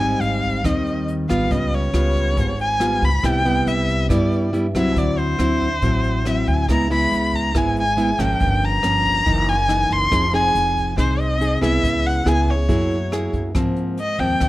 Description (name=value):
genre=bossa nova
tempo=140 BPM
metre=4/4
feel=straight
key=unclear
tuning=A4 = 441 Hz
part: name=rich erhu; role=melody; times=0.0-14.5 s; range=C5 to C6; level=-21 LUFS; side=left 1 dB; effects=none
part: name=nylon-string guitar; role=accompaniment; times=0.0-14.5 s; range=Gb2 to Ab4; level=-21 LUFS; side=equal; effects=none
part: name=upright bass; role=bass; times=0.0-14.5 s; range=F1 to Ab2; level=-23 LUFS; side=equal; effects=none
part: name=jazz brush drum kit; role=drums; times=0.0-14.5 s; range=hi-hat, kick drum, rim click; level=-27 LUFS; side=equal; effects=none
room=light reverb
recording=none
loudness=-17 LUFS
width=side -16 dB against mid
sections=0.0-13.6 A section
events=none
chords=0.0 Abmaj7; 1.5 Db7#11; 3.2 Cmaj7; 5.0 D9; 6.7 Dbm7; 8.4 Gm7b5; 9.3 Gb13; 10.1 Fm7; 11.8 Dbm7; 12.7 Gb9; 13.6 Ab69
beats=0.21 0.64 1.08 | 1.51 1.94 2.38 2.81 | 3.24 3.67 4.10 4.54 | 4.97 5.40 5.83 6.26 | 6.69 7.12 7.55 7.98 | 8.41 8.84 9.27 9.69 | 10.12 10.55 10.98 11.41 | 11.84 12.27 12.69 13.12 | 13.55 13.98 14.41